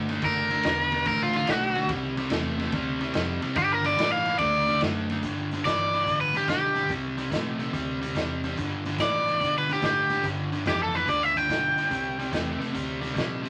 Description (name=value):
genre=electric blues shuffle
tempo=144 BPM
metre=4/4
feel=swing 67% on 8ths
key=G major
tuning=A4 = 442 Hz
part: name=overdriven electric guitar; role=riff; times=0.0-13.5 s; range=G2 to B3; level=-32 LUFS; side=equal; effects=none
part: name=vintage muted fingered electric bass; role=bass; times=0.0-13.5 s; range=E1 to B2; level=-39 LUFS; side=equal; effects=none
part: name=raw garage drum kit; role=drums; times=0.1-13.5 s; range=hi-hat, kick drum, ride cymbal, snare drum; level=-35 LUFS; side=equal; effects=none
part: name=overdriven electric guitar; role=melody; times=0.3-12.6 s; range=F4 to G5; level=-26 LUFS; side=equal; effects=none
room=moderate club reverb, RT60 0.6 s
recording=vinyl crackle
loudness=-26 LUFS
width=mono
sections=0.0-5.2 A section; 5.2-13.5 B section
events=overdriven electric guitar solo 0.0-5.2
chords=0.0 Dadd9; 1.9 Cadd9; 3.6 Gsus2; 4.4 D; 5.2 Gadd9; 6.9 C9; 8.6 G9; 11.9 C9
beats=| 0.24 0.65 1.07 1.49 | 1.90 2.32 2.74 3.15 | 3.57 3.99 4.40 4.82 | 5.24 5.65 6.07 6.49 | 6.90 7.32 7.74 8.16 | 8.57 8.99 9.41 9.82 | 10.24 10.66 11.08 11.49 | 11.91 12.33 12.74 13.16